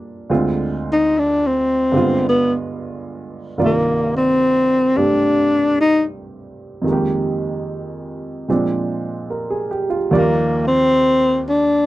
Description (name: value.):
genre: jazz.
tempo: 74 BPM.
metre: 4/4.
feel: swing 67% on 8ths.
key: unclear.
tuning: A4 = 438 Hz.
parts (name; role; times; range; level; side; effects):
warm baby grand piano; accompaniment; 0.0-11.9 s; C2 to D5; -21 LUFS; right 2 dB; none.
breathy tenor saxophone; melody; 0.9-11.9 s; Bb3 to Eb4; -15 LUFS; left 1 dB; none.
room: light reverb.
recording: dry, close 1970s-style studio recording.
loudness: -15 LUFS.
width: side -16 dB against mid.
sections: 0.0-11.9 A section.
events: tenor saxophone solo 0.0-11.9.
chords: 0.3 Dm7b5; 1.9 G7b9; 3.6 Cm11; 6.8 Fm11; 8.5 Bb9; 10.1 Ebmaj9.